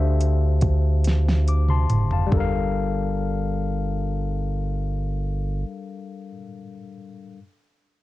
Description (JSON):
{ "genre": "slow six-eight R&B", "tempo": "47 BPM (dotted quarters)", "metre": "6/8", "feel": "straight", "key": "G dorian", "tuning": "A4 = 440 Hz", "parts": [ { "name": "barky tine electric piano", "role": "accompaniment", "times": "0.0-7.4 s", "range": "D3 to D6", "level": "-28 LUFS", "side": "left 6 dB", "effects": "cassette tape" }, { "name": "round analog bass", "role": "bass", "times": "0.0-5.6 s", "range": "F#1 to D2", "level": "-22 LUFS", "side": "right 1 dB", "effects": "tube saturation" }, { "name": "smooth R&B drum kit", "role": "drums", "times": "0.2-2.5 s", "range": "hi-hat, kick drum, snare drum, toms", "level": "-23 LUFS", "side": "right 1 dB", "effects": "overdrive, cassette tape" } ], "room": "little or no reverb", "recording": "home recording on cassette", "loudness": "-20 LUFS", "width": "side -17 dB against mid", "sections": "0.0-2.3 A section; 2.3-4.9 B section", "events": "drum fill 1.0-2.3", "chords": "0.0 D7sus4; 2.3 Gm9" }